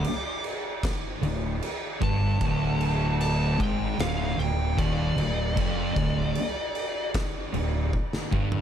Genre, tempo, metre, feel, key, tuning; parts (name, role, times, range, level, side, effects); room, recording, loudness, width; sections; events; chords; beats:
stoner and doom metal; 76 BPM; 4/4; straight; D minor; A4 = 442 Hz
fuzz lead guitar; melody; 0.0-7.1 s; D5 to D6; -33 LUFS; right 1 dB; distortion, analog delay
thick fuzz guitar; riff; 0.0-8.6 s; D2 to G#2; -30 LUFS; left 7 dB; distortion
thick fuzz guitar; riff; 0.0-8.6 s; D2 to G#2; -29 LUFS; right 6 dB; distortion
oversized low-tuned drum kit; drums; 0.0-8.6 s; crash cymbal, kick drum, snare drum, toms; -30 LUFS; equal
fuzz fingered electric bass; bass; 1.2-8.6 s; D1 to G#1; -30 LUFS; equal; overdrive
little or no reverb; dark, warm production; -24 LUFS; side -9 dB against mid
0.0-8.6 A section
lead electric guitar solo 0.0-8.6; drum fill 7.9-8.6
0.0 Dm
0.04 0.83 1.62 | 2.41 3.20 3.99 4.78 | 5.57 6.36 7.14 7.93